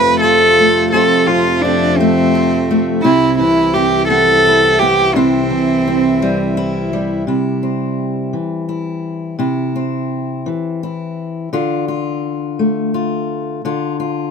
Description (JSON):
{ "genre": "acoustic folk duo or small band", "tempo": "57 BPM (dotted quarters)", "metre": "6/8", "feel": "straight", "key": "C major", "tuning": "A4 = 440 Hz", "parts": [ { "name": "warm cello", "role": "melody", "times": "0.0-6.9 s", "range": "C4 to B4", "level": "-12 LUFS", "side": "right 1 dB", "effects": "none" }, { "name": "fingerpicked steel-string acoustic guitar", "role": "accompaniment", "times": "0.0-14.3 s", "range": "F2 to F4", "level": "-17 LUFS", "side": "left 1 dB", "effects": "none" }, { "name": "hand-pumped harmonium", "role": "sustained chords", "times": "0.0-7.2 s", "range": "C2 to E5", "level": "-21 LUFS", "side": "left 1 dB", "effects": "none" } ], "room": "light reverb", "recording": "close, detailed microphones", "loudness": "-13 LUFS", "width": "side -6 dB against mid", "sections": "0.0-7.3 A section; 7.3-14.3 B section", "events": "none", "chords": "0.0 F; 3.1 Cmaj7; 7.3 C; 11.5 Dm" }